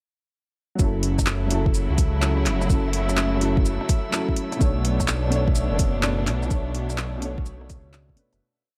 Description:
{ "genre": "future garage", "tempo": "126 BPM", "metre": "4/4", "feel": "swing 66% on 16ths", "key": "F# minor", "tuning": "A4 = 440 Hz", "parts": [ { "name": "dark upright piano", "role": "accompaniment", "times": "0.8-8.4 s", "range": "B2 to C#5", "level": "-30 LUFS", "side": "equal", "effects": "sidechain pumping, dub echo" }, { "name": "clear symphonic string section", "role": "sustained chords", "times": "0.8-8.4 s", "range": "C#3 to E4", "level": "-33 LUFS", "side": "equal", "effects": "vintage 12-bit sampler grit, sidechain pumping" }, { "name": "dark detuned saw bass", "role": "bass", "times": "0.8-8.4 s", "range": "F#1 to C#2", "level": "-27 LUFS", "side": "equal", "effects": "sidechain pumping" }, { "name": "deep house drum kit", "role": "drums", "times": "0.8-8.4 s", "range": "handclaps, hi-hat, rim click, shaker", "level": "-30 LUFS", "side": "equal", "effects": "none" }, { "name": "electronic kick drum", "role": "drums", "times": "0.8-8.2 s", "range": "none", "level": "-24 LUFS", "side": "equal", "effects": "none" }, { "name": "drifting glass-harmonics texture", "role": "texture", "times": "1.5-8.4 s", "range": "E5", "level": "-42 LUFS", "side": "equal", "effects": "chorus, built-in reverb" } ], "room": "digital ambience", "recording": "none", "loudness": "-23 LUFS", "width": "mono", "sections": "0.8-8.4 chorus", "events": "fade-out 5.9-8.4", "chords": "0.8 F#m7; 4.6 Bm9" }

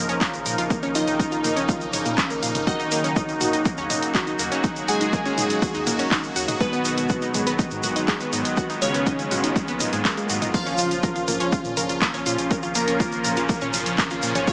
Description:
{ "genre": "melodic techno", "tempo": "122 BPM", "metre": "4/4", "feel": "straight", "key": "Bb phrygian", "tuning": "A4 = 440 Hz", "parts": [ { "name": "sweeping resonant pad", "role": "sustained chords", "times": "0.0-14.5 s", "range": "Bb2 to Bb4", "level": "-30 LUFS", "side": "equal", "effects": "chorus, sidechain pumping" }, { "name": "unison pluck", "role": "arpeggios", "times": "0.0-14.5 s", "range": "Ab3 to F6", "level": "-30 LUFS", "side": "equal", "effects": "sidechain pumping, digital delay" }, { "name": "round analog bass", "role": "bass", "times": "0.0-14.5 s", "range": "Eb1 to Bb2", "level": "-39 LUFS", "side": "equal", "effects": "sidechain pumping" }, { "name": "punchy analog drum machine", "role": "drums", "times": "0.1-14.5 s", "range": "crash cymbal, handclaps, hi-hat, toms", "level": "-30 LUFS", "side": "equal", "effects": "none" }, { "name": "tube shaker", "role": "percussion", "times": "0.1-14.5 s", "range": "none", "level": "-34 LUFS", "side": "equal", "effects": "none" }, { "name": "electronic kick drum", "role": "drums", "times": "0.2-14.5 s", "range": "none", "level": "-28 LUFS", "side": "equal", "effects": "overdrive" }, { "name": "soft supersaw", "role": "melody", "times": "0.9-14.5 s", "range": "Cb3 to Bb4", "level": "-30 LUFS", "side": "equal", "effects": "cassette tape, sidechain pumping, digital delay" }, { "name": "glassy wavetable pluck", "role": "second line", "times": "1.0-14.5 s", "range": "Cb5 to Bb5", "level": "-34 LUFS", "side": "equal", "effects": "chorus, sidechain pumping, digital delay" }, { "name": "swell", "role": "sound effects", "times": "10.0-10.5 s", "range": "none", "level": "-39 LUFS", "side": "equal", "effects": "none" } ], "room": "light reverb", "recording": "small speaker sound", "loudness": "-23 LUFS", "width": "mono", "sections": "0.0-14.5 A section", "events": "none", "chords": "0.0 Bbm; 2.7 Ebm7; 6.6 Abm7; 10.5 Bbm" }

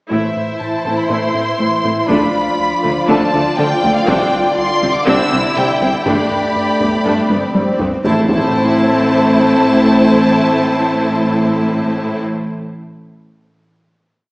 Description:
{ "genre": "cinematic, hybrid orchestral and electronic film score", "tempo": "121 BPM", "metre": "4/4", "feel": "straight", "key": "A minor", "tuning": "A4 = 440 Hz", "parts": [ { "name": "rich studio violin section", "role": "melody", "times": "0.1-12.2 s", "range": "E5 to E6", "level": "-19 LUFS", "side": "equal", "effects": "none" }, { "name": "clear symphonic violin section", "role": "second line", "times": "0.1-12.2 s", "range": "E4 to D5", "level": "-20 LUFS", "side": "equal", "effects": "none" }, { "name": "rich studio viola section", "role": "accompaniment", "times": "0.1-12.2 s", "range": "F3 to E4", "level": "-20 LUFS", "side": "equal", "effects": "none" }, { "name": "warm French horn section", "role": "sustained chords", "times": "0.1-11.9 s", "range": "D3 to E4", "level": "-18 LUFS", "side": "left 1 dB", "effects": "none" }, { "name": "rubbery square bass", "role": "riff", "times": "0.1-7.9 s", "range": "C2 to A3", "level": "-25 LUFS", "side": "equal", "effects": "none" }, { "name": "clear studio cello section", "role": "bass", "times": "0.1-12.2 s", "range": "G2 to D3", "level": "-21 LUFS", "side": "equal", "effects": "none" }, { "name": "rich symphonic double bass section", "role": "bass", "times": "0.1-12.2 s", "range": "G1 to D2", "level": "-25 LUFS", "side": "equal", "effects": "none" }, { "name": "taiko ensemble", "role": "drums", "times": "0.1-9.0 s", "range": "none", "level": "-21 LUFS", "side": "equal", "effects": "none" }, { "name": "swell and impact", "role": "sound effects", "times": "7.4-10.0 s", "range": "none", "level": "-25 LUFS", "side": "equal", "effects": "none" } ], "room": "wet scoring stage reverb, RT60 1.4 s", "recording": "heard from further back in the room, small speaker sound", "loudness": "-12 LUFS", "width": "side -24 dB against mid", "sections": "0.1-8.1 theme; 8.1-12.0 final chord", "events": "drum fill 7.3-8.1; swell 7.4-8.1; impact 8.1-10.0", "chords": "0.1 Am; 2.1 Dm; 4.1 Cadd9; 6.1 Gadd9; 8.1 Am" }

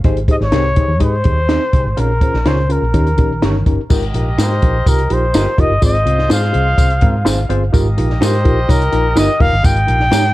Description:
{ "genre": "uptempo 1960s-style soul", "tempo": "125 BPM", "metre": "4/4", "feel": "straight", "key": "unclear", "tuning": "A4 = 440 Hz", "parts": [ { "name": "reed electric piano", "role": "accompaniment", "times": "0.0-10.3 s", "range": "Ab2 to Eb5", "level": "-21 LUFS", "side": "left 1 dB", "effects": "overdrive, phaser" }, { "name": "vintage muted fingered electric bass", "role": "bass", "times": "0.0-10.3 s", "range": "F1 to Ab2", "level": "-16 LUFS", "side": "equal", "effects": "none" }, { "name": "compact cocktail drum kit", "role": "drums", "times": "0.0-10.3 s", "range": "crash cymbal, hi-hat, kick drum, snare drum", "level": "-15 LUFS", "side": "equal", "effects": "vintage 12-bit sampler grit" }, { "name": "breathy trumpet", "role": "melody", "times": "0.3-10.3 s", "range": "Bb4 to G5", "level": "-18 LUFS", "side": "left 1 dB", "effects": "none" }, { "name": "electric guitar through a small old amp", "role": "stabs", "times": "0.5-10.2 s", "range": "Bb3 to F5", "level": "-26 LUFS", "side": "right 5 dB", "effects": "analog chorus, tape echo" }, { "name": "clear horn section", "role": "second line", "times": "3.9-10.3 s", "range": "F4 to Eb5", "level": "-26 LUFS", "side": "right 1 dB", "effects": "none" }, { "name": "tambourine", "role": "percussion", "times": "3.9-10.2 s", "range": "none", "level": "-28 LUFS", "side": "left 3 dB", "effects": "none" } ], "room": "light reverb", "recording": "dark, warm production", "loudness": "-12 LUFS", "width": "side -16 dB against mid", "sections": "0.0-3.9 A section; 3.9-10.3 B section", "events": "none", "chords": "0.0 Abmaj7; 2.0 Bbm7; 2.9 Eb7; 3.9 Ebadd9/Ab; 5.8 Fm/Ab; 7.7 Ebadd9" }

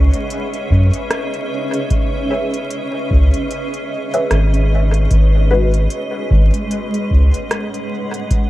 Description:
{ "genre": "ambient dub", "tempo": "75 BPM", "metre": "4/4", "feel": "swing 58% on 16ths", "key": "C# minor", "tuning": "A4 = 440 Hz", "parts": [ { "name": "granular cloud pad", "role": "sustained chords", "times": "0.0-8.5 s", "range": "G#3 to F#5", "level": "-22 LUFS", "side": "equal", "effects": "built-in reverb" }, { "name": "soft dub sub bass", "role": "bass", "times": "0.0-7.3 s", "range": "G#1 to F#2", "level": "-12 LUFS", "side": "equal", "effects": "none" }, { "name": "wind-like tuned noise texture", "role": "texture", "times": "0.0-8.5 s", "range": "C#4 to C#5", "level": "-29 LUFS", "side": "right 2 dB", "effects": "built-in reverb" }, { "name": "organic electronic drum kit", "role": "drums", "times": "0.1-8.5 s", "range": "hi-hat, rim click", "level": "-25 LUFS", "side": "equal", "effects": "dub echo" }, { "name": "electronic kick drum", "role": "drums", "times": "0.7-8.5 s", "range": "none", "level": "-18 LUFS", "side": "equal", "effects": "none" }, { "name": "filtered dub chord stab", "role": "stabs", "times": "2.3-5.8 s", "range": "G#3 to E5", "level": "-23 LUFS", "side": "left 1 dB", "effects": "phaser, lush chorus, dub echo" } ], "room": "little or no reverb", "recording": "echo-heavy mix, vinyl crackle", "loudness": "-14 LUFS", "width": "side -16 dB against mid", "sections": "0.0-8.5 A section", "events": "none", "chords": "0.0 C#m7; 5.1 G#m7" }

